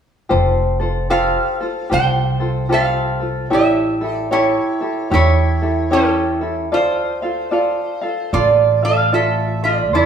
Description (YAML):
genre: Hawaiian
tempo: 75 BPM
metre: 4/4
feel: swing 63% on 8ths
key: F major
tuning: A4 = 439 Hz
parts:
  - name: tenor ukulele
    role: accompaniment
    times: 0.3-10.1 s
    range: E4 to F5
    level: -19 LUFS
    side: left 1 dB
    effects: none
  - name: upright bass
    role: bass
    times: 0.3-10.1 s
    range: F1 to F2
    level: -20 LUFS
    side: right 1 dB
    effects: none
  - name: lap resonator guitar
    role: melody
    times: 1.1-10.1 s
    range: C#4 to G5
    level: -18 LUFS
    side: right 3 dB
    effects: none
room: wet stone room reverb, RT60 1.2 s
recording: band playing live in one room, small room ambience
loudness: -15 LUFS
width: side -8 dB against mid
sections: 0.3-10.1 A section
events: none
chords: 0.3 Fadd9; 3.5 A7; 6.7 Dm